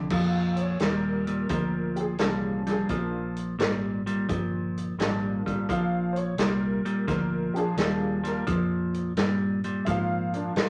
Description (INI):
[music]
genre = electric blues shuffle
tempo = 86 BPM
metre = 4/4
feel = swing 68% on 8ths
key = Bb mixolydian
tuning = A4 = 442 Hz
[part]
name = clean electric guitar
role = riff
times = 0.0-10.7 s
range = Bb2 to G3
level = -29 LUFS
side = equal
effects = none
[part]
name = vintage muted fingered electric bass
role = bass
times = 0.0-10.7 s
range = G1 to Bb2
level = -36 LUFS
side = equal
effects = none
[part]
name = honky-tonk upright piano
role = accompaniment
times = 0.1-10.7 s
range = E3 to F5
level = -35 LUFS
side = equal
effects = none
[part]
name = swinging big-band drum kit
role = drums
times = 0.1-10.7 s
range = crash cymbal, hi-hat, kick drum, snare drum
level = -32 LUFS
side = equal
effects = none
[sound]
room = moderate studio reverb, RT60 0.9 s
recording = none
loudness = -27 LUFS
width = mono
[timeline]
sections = 0.1-10.7 A section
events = none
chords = 0.1 Bb7